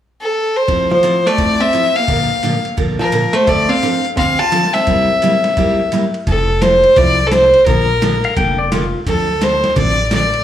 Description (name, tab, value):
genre	country, western swing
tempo	172 BPM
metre	4/4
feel	swing 63% on 8ths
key	F major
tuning	A4 = 441 Hz
part	clear fiddle	melody	0.2-10.4 s	A4 to A5	-14 LUFS	left 1 dB	plate reverb, slapback echo
part	picked steel-string acoustic guitar	accompaniment	0.7-10.2 s	Bb2 to A4	-20 LUFS	right 2 dB	plate reverb, slapback echo
part	boom bap sampler-style drum kit	drums	0.7-10.4 s	hi-hat, kick drum, ride cymbal, snare drum	-23 LUFS	equal	none
part	archtop guitar, miked and amplified	second line	0.9-5.9 s	F3 to F4	-19 LUFS	right 2 dB	plate reverb, slapback echo
part	upright bass	bass	6.3-10.3 s	F1 to D2	-19 LUFS	equal	none
part	clean lap steel guitar	second line	8.2-9.0 s	F4 to G5	-19 LUFS	left 5 dB	plate reverb, slapback echo
room	wet club reverb, RT60 0.6 s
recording	live gig heard through the venue's PA, club reverb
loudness	-12 LUFS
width	side -11 dB against mid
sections	0.7-6.3 A section; 6.3-10.4 B section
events	none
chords	0.0 N.C.; 0.7 Fmaj7; 2.1 Bbmaj7; 3.5 Dm7; 4.9 C7; 6.3 Fmaj7; 7.7 Bbmaj7; 9.1 Dm7